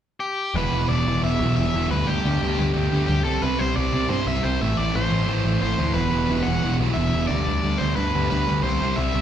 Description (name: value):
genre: punk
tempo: 178 BPM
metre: 4/4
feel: straight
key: E minor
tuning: A4 = 439 Hz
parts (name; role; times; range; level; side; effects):
- overdriven electric guitar; melody; 0.2-9.2 s; G4 to F#5; -26 LUFS; left 1 dB; slapback echo
- growling picked electric bass; bass; 0.5-9.2 s; E1 to G2; -24 LUFS; left 1 dB; overdrive
- sludgy distorted guitar; riff; 0.6-9.2 s; A2 to E4; -28 LUFS; left 10 dB; overdrive, slapback echo
- sludgy distorted guitar; riff; 0.6-9.2 s; E2 to C4; -24 LUFS; right 7 dB; overdrive, slapback echo
room: light reverb, digital ambience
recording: live gig heard through the venue's PA, recital hall reverb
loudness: -20 LUFS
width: side -9 dB against mid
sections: 0.6-9.2 A section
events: none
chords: 0.0 N.C.; 0.6 Em; 1.9 G/D; 3.3 C; 4.6 Am; 6.0 Em; 7.3 G/D; 8.6 C